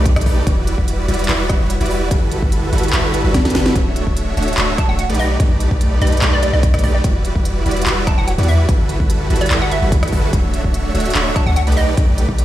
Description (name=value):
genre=future bass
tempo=146 BPM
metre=4/4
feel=half-time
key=D major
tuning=A4 = 438 Hz
part: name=supersaw chords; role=riff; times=0.0-12.4 s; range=G3 to E5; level=-20 LUFS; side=right 1 dB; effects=sidechain pumping, dub echo
part: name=warm 808-style bass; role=bass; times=0.0-12.4 s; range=D1 to E2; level=-18 LUFS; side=equal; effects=sidechain pumping
part: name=electronic kick drum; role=drums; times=0.1-12.4 s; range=none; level=-17 LUFS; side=equal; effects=overdrive
part: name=trap drum kit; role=drums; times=0.1-12.4 s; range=handclaps, hi-hat, rim click, snare drum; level=-22 LUFS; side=equal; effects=none
part: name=swell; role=sound effects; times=3.1-3.8 s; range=none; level=-29 LUFS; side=left 1 dB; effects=none
part: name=hollow square pluck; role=melody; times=4.8-11.9 s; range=D5 to A5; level=-24 LUFS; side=equal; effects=chorus, sidechain pumping, dub echo
room=light reverb, digital ambience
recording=played on a big sound system in a bare room, stone room reverb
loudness=-14 LUFS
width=side -13 dB against mid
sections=0.0-12.4 A section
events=swell 3.1-3.8; drum fill 3.3-3.8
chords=0.5 Em9; 2.1 Gmaj13; 3.8 Dmaj9; 5.2 B7alt; 7.0 Em9; 8.7 Gmaj13; 10.3 Dmaj9; 11.8 B7alt